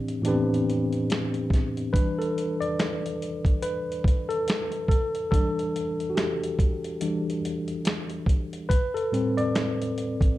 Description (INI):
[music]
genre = lo-fi hip hop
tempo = 71 BPM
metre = 4/4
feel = swing 60% on 16ths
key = E minor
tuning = A4 = 445 Hz
[part]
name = mellow tine electric piano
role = accompaniment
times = 0.0-10.4 s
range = A2 to D5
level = -26 LUFS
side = left 1 dB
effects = medium stereo tremolo, cassette tape, low-pass filter
[part]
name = dusty soul sampler-style drum kit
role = drums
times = 0.1-10.4 s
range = finger snaps, hi-hat, kick drum, snare drum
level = -25 LUFS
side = equal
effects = none
[sound]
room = moderate studio reverb, RT60 0.6 s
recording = dark, warm production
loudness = -24 LUFS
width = side -15 dB against mid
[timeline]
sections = 0.0-1.9 A section; 1.9-10.4 B section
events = filter sweep on tine electric piano 0.0-1.9; tine electric piano solo 1.9-10.4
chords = 0.0 Am11; 1.9 Em7; 8.7 Am7